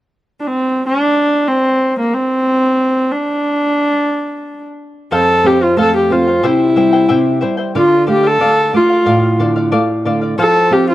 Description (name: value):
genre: andean folk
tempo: 91 BPM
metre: 2/4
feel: straight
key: unclear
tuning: A4 = 440 Hz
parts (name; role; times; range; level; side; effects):
- warm viola; melody; 0.4-10.9 s; Bb3 to A4; -13 LUFS; equal; none
- charango; accompaniment; 5.1-10.9 s; E4 to G5; -20 LUFS; left 4 dB; none
- nylon-string guitar; accompaniment; 5.1-10.9 s; F2 to C4; -16 LUFS; right 2 dB; none
room: light reverb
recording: dry, close 1970s-style studio recording, lossy compression artefacts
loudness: -11 LUFS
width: side -15 dB against mid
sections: 0.0-5.1 A section; 5.1-10.9 B section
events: none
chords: 0.0 N.C.; 5.1 F; 6.4 C; 7.8 Dm; 10.4 F